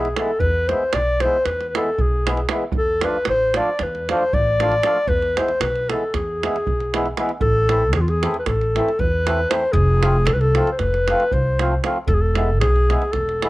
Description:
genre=balkan folk, Balkan wedding band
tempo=231 BPM (eighths)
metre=9/8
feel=straight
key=E phrygian dominant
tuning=A4 = 440 Hz
part: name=mellow clarinet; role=melody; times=0.0-13.5 s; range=F4 to D5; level=-20 LUFS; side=left 1 dB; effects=cassette tape
part: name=mellow accordion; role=accompaniment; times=0.0-13.5 s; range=E3 to F4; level=-25 LUFS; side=equal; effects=cassette tape
part: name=upright bass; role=bass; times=0.0-13.5 s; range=E1 to E2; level=-21 LUFS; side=equal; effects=none
part: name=davul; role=percussion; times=0.1-13.5 s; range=none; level=-26 LUFS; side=right 3 dB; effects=none
room=studio reverb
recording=home recording on cassette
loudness=-17 LUFS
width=side -18 dB against mid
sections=0.0-7.4 A section; 7.4-13.5 B section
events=none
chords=0.0 E; 2.7 Dm; 5.1 E; 7.4 Am; 9.7 F; 12.1 E

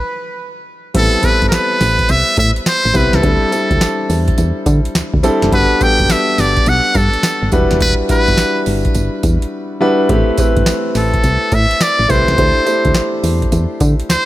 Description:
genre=R&B, new jack swing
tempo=105 BPM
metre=4/4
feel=swing 65% on 16ths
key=unclear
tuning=A4 = 440 Hz
part: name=trumpet with metal mute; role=melody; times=0.0-14.3 s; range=A4 to G5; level=-16 LUFS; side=equal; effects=none
part: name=clear grand piano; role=accompaniment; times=0.9-14.3 s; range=G3 to C5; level=-17 LUFS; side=left 1 dB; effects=none
part: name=solid FM bass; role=bass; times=0.9-14.2 s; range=D#1 to D3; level=-16 LUFS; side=equal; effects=none
part: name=booming analog drum machine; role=drums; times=0.9-14.3 s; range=crash cymbal, hi-hat, kick drum, snare drum, tambourine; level=-17 LUFS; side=equal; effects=none
room=light reverb, digital ambience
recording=none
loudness=-11 LUFS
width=side -15 dB against mid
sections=0.9-14.3 A section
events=stop 0.0-0.9; drums muted 9.5-10.1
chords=0.0 N.C.; 0.9 Am9; 3.2 D9sus4; 5.5 Gmaj9; 7.5 Em9; 10.1 Am9; 12.4 D9sus4

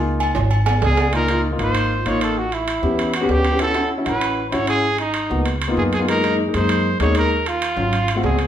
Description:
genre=Afro-Cuban jazz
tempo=194 BPM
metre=4/4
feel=straight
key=Db major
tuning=A4 = 440 Hz
part: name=warm concert grand piano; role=accompaniment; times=0.0-8.4 s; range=Gb3 to Bb4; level=-21 LUFS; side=left 2 dB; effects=none
part: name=upright bass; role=bass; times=0.0-8.5 s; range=Ab1 to Gb2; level=-22 LUFS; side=equal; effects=none
part: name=agogo bells and timbales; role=percussion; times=0.2-8.5 s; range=none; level=-25 LUFS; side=right 3 dB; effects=none
part: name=breathy trumpet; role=melody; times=0.8-8.5 s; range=Eb4 to Db5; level=-22 LUFS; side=right 2 dB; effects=none
room=wet large studio reverb, RT60 0.7 s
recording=band playing live in one room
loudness=-17 LUFS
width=side -10 dB against mid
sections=0.0-1.1 A section; 1.1-8.5 B section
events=grand piano solo 0.0-1.1; drum fill 0.4-1.1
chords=0.0 Db69; 2.4 A9; 3.6 Dmaj9; 4.8 Abm7; 5.5 Db13; 6.1 Gb69; 7.3 Ebm9; 7.9 Ab7b9

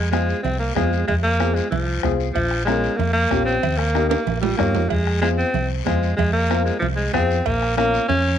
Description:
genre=latin, cumbia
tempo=188 BPM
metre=4/4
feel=straight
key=F minor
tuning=A4 = 435 Hz
part: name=bright alto saxophone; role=melody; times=0.0-8.4 s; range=F3 to Db4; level=-22 LUFS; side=right 1 dB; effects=none
part: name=hollow-body short-scale fingered electric bass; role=bass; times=0.0-8.4 s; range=Bb1 to G2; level=-23 LUFS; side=equal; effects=none
part: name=warm upright piano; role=accompaniment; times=0.1-8.0 s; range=C4 to Db5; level=-26 LUFS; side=left 9 dB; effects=none
part: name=bombo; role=percussion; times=0.1-7.9 s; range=none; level=-29 LUFS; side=left 4 dB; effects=none
part: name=congas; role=percussion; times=0.1-8.3 s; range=none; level=-29 LUFS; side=right 12 dB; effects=none
part: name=guiro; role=percussion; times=0.1-8.4 s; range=none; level=-36 LUFS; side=left 14 dB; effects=none
part: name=cowbell and timbales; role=percussion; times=0.5-8.3 s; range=none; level=-28 LUFS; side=right 13 dB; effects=none
room=moderate echo chamber reverb, RT60 1.3 s, studio reverb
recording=1960s-style stereo with parts hard left and right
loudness=-18 LUFS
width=side -9 dB against mid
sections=0.0-8.4 A section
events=drum fill 4.1-4.9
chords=0.0 Fm; 2.4 Bbm; 3.6 Eb; 4.9 Fm; 7.5 Bbm

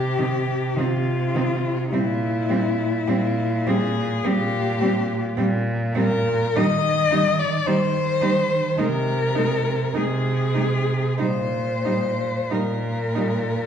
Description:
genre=classical, lyrical piece for cello ensemble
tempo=45-55 BPM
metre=4/4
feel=rubato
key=unclear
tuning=A4 = 438 Hz
part: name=warm cello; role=melody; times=0.0-13.7 s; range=E4 to Eb5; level=-24 LUFS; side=left 4 dB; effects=none
part: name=rich cello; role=bass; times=0.0-13.6 s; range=Bb2 to Eb3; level=-24 LUFS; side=right 2 dB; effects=none
part: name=warm cello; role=second line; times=0.2-13.2 s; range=C4 to Eb4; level=-30 LUFS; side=right 5 dB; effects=none
part: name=warm cello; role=accompaniment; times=0.2-13.2 s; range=Eb3 to Ab3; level=-27 LUFS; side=equal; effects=none
room=wet recital hall reverb, RT60 1.4 s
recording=heard from further back in the room, nothing above 10.6 kHz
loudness=-20 LUFS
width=side -8 dB against mid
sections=0.0-13.7 A section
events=none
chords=0.0 Cm; 1.9 C7/Bb (rootless); 6.6 Eb; 8.8 Ab/C; 11.2 N.C.

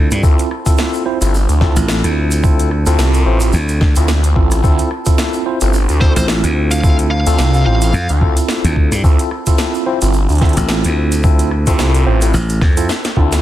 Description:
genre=glitch hop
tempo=109 BPM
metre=4/4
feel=swing 57% on 16ths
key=D minor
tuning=A4 = 440 Hz
part: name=tine electric piano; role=stabs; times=0.0-13.4 s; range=C4 to C5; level=-19 LUFS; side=right 1 dB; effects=medium stereo tremolo, sidechain pumping, tape echo
part: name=slap bass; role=bass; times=0.0-12.9 s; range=A1 to G2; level=-15 LUFS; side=equal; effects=none
part: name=drum and bass drum kit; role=drums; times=0.1-13.4 s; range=hi-hat, rim click, snare drum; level=-23 LUFS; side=equal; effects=none
part: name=tube shaker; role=percussion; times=0.1-13.4 s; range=none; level=-29 LUFS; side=right 3 dB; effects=none
part: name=phased detuned saw bass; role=bass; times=0.2-13.4 s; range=G1 to D2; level=-14 LUFS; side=equal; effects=phaser, overdrive
part: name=electronic kick drum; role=drums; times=0.2-13.3 s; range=none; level=-13 LUFS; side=equal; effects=none
part: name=fuzz lead guitar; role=melody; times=6.0-8.1 s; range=C5 to F5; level=-22 LUFS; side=equal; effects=distortion, vintage 12-bit sampler grit, tape echo
room=little or no reverb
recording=dense, heavily limited modern master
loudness=-11 LUFS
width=side -13 dB against mid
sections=0.0-13.4 A section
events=drum fill 12.6-13.4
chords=0.0 Dm9

